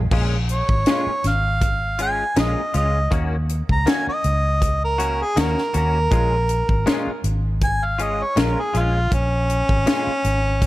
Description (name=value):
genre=straight-eighth soul blues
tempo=80 BPM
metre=4/4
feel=swing 53% on 16ths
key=Bb minor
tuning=A4 = 440 Hz
part: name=vintage muted fingered electric bass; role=bass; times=0.0-10.7 s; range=Ab1 to Eb2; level=-22 LUFS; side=equal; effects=none
part: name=direct-recorded clean electric guitar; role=stabs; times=0.1-10.1 s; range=Bb2 to Gb4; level=-28 LUFS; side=left 3 dB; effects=ensemble chorus
part: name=tight funk drum kit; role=drums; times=0.1-10.7 s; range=crash cymbal, hi-hat, kick drum, snare drum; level=-22 LUFS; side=equal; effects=none
part: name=mellow harmonica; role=melody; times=0.5-10.7 s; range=Db4 to Bb5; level=-22 LUFS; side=right 1 dB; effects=overdrive
room=studio ambience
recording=none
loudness=-18 LUFS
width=side -17 dB against mid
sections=0.1-10.7 A section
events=harmonica solo 0.1-10.7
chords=0.1 Bbm7; 3.1 Ebm7; 6.1 Bbm7